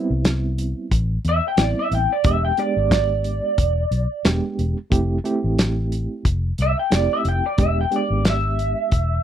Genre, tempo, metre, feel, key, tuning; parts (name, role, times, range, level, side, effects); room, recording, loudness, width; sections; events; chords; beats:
straight-eighth soul blues; 90 BPM; 4/4; swing 56% on 16ths; A4 = 439 Hz
reed electric piano; accompaniment; 0.0-8.9 s; G3 to G4; -26 LUFS; right 3 dB; fast tremolo
vintage muted fingered electric bass; bass; 0.1-9.2 s; E1 to E2; -22 LUFS; left 1 dB
warm soul drum kit; drums; 0.2-9.1 s; hi-hat, kick drum, snare drum; -20 LUFS; equal
electric guitar through a small old amp; melody; 1.3-9.2 s; D5 to G5; -22 LUFS; right 1 dB; analog chorus
little or no reverb; dry, close 1970s-style studio recording; -18 LUFS; side -10 dB against mid
0.0-9.2 A section
clean electric guitar solo 0.0-9.2; reed electric piano fill 8.9-9.2
0.0 Am9; 2.3 E7#9; 4.9 Fmaj7; 7.6 E7#9
0.25 0.92 1.58 | 2.25 2.92 3.58 4.25 | 4.92 5.59 6.25 6.92 | 7.59 8.25 8.92